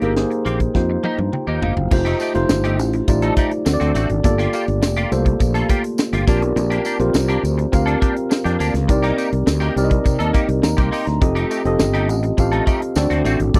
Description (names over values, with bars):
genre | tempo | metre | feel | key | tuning
polished 1980s jazz-funk pop | 103 BPM | 4/4 | straight | unclear | A4 = 440 Hz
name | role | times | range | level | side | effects
tine electric piano | accompaniment | 0.0-13.6 s | A3 to C6 | -23 LUFS | equal | overdrive, lush chorus
clean electric guitar | riff | 0.0-13.6 s | A3 to A4 | -26 LUFS | equal | ensemble chorus
fretless electric bass | bass | 0.0-13.6 s | F1 to C3 | -22 LUFS | equal | none
tight funk drum kit | drums | 0.0-13.6 s | crash cymbal, hi-hat, kick drum, snare drum, toms | -21 LUFS | equal | none
tambourine | percussion | 1.9-13.6 s | none | -39 LUFS | equal | none
room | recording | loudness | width
little or no reverb | dry, close 1970s-style studio recording | -18 LUFS | mono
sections
0.0-1.9 A section; 1.9-13.6 B section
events
drum fill 0.7-1.9; tine electric piano fill 0.7-1.9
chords
0.0 Abmaj9; 0.7 F9sus4; 1.9 F9; 3.7 D7; 4.2 Gm7; 6.3 Bb6; 8.9 Cm7; 11.2 F9; 13.0 D7